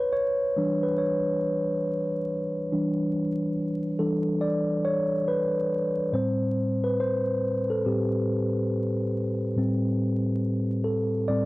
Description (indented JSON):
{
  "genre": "R&B",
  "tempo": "70 BPM",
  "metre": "4/4",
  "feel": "swing 63% on 16ths",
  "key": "A minor",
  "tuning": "A4 = 441 Hz",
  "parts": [
    { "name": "mellow tine electric piano", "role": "solo", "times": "0.0-11.5 s", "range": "A2 to D5", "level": "-24 LUFS", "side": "equal", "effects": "fast stereo tremolo" }
  ],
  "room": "moderate studio reverb, RT60 0.6 s",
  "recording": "dry, close 1970s-style studio recording, vinyl crackle",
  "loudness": "-24 LUFS",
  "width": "side -21 dB against mid",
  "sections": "0.0-11.5 A section",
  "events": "tine electric piano solo 0.0-11.5",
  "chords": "0.0 Em7; 6.1 Am7",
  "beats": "0.13 0.99 1.85 | 2.70 3.56 4.42 5.28 | 6.13 6.99 7.85 8.70 | 9.56 10.42 11.28"
}